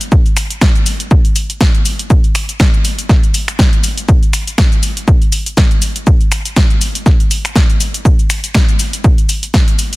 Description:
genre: house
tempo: 121 BPM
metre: 4/4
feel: swing 56% on 16ths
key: none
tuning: none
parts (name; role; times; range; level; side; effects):
- punchy analog drum machine; drums; 0.0-10.0 s; cabasa, finger snaps, hi-hat, snare drum; -17 LUFS; equal; sidechain pumping on perc, sidechain pumping on hats
- electronic kick drum; drums; 0.1-9.7 s; none; -10 LUFS; equal; none
room: little or no reverb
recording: dense, heavily limited modern master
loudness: -10 LUFS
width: side -21 dB against mid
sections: 0.0-10.0 A section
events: none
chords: none

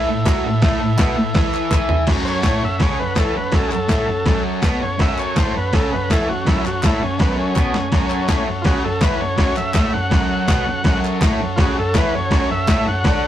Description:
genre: garage rock duo or trio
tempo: 164 BPM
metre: 4/4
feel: straight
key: F# minor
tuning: A4 = 440 Hz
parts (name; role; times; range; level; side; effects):
- combo organ; sustained chords; 0.0-13.3 s; E4 to E5; -27 LUFS; left 2 dB; none
- fuzz guitar; riff; 0.0-13.3 s; F#2 to F#4; -21 LUFS; equal; distortion
- boom bap sampler-style drum kit; drums; 0.3-13.1 s; crash cymbal, kick drum, snare drum, toms; -19 LUFS; equal; none
- group handclap; percussion; 0.3-12.8 s; none; -30 LUFS; left 1 dB; none
- overdriven combo organ; melody; 2.2-13.3 s; B3 to F#5; -23 LUFS; equal; none
room: wet studio reverb, RT60 0.5 s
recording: rough rehearsal-room recording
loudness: -16 LUFS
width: side -11 dB against mid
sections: 0.0-2.1 A section; 2.1-13.3 B section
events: drum fill 1.7-2.1, 7.6-7.9; transistor combo organ solo 2.1-13.3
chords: 0.0 A5; 2.1 F#m

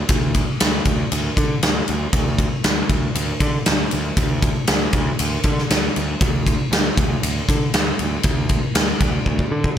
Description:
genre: hard rock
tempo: 118 BPM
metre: 4/4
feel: straight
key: unclear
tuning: A4 = 443 Hz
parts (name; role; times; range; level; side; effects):
- fuzz picked electric bass; bass; 0.0-9.7 s; D2 to D3; -23 LUFS; equal; overdrive
- big rock drum kit; drums; 0.1-9.8 s; kick drum, ride cymbal, snare drum; -18 LUFS; equal; none
room: light reverb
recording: none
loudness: -17 LUFS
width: side -10 dB against mid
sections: 0.0-9.8 A section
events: drum fill 9.3-9.8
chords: none

